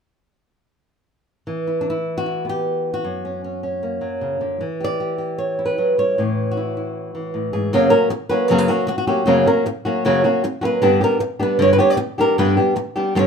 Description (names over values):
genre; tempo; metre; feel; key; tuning
flamenco; free time; none; none; F# phrygian dominant; A4 = 437 Hz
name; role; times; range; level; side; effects
flamenco guitar; melody; 1.5-13.3 s; F#2 to D5; -17 LUFS; equal; none
room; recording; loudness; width
moderate studio reverb, RT60 0.8 s; minimal, uncompressed stereo recording; -17 LUFS; side -6 dB against mid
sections
1.5-7.7 A section; 7.7-13.3 B section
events
none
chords
1.5 Em; 3.0 F#; 4.6 Em; 6.2 A; 7.7 F#; 10.8 G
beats
free time